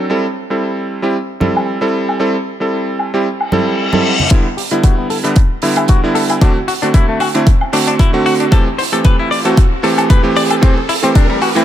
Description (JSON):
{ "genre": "nu-disco, nu disco", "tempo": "114 BPM", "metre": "4/4", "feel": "swing 55% on 16ths", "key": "unclear", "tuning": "A4 = 445 Hz", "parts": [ { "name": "bright electric grand piano", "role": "accompaniment", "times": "0.0-11.6 s", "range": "D3 to A4", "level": "-15 LUFS", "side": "right 2 dB", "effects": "digital delay" }, { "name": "congas", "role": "percussion", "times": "1.4-4.3 s", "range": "none", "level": "-18 LUFS", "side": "right 3 dB", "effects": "none" }, { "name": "damped 70s drum kit", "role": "drums", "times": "1.6-11.6 s", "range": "hi-hat, toms, woodblock", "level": "-21 LUFS", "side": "right 2 dB", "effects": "high-pass filter on hats, low-pass filter on hats, high-pass filter on toms, low-pass filter on toms, high-pass filter on snare, low-pass filter on snare, high-pass filter on perc, low-pass filter on perc, high-pass filter on room, low-pass filter on room" }, { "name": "reverse cymbal and riser", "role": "sound effects", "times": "3.5-11.6 s", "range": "none", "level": "-22 LUFS", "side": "left 1 dB", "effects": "none" }, { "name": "direct-recorded clean electric guitar", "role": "riff", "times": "4.3-11.6 s", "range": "G3 to D5", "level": "-19 LUFS", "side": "left 4 dB", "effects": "wide subtle chorus, low-pass filter, digital delay" }, { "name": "electronic kick drum", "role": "drums", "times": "4.3-11.3 s", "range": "none", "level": "-10 LUFS", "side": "equal", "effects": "none" } ], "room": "light reverb", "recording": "none", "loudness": "-11 LUFS", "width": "side -11 dB against mid", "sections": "0.0-4.3 A section; 4.3-11.6 B section", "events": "reverse cymbal 3.5-4.3; build-up 4.3-11.6; drum fill 4.3-11.6; riser 4.3-11.6; filter sweep on clean electric guitar 4.3-11.6", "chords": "0.1 Am7; 4.3 Em7; 6.4 D7; 8.5 Am7; 10.6 C6" }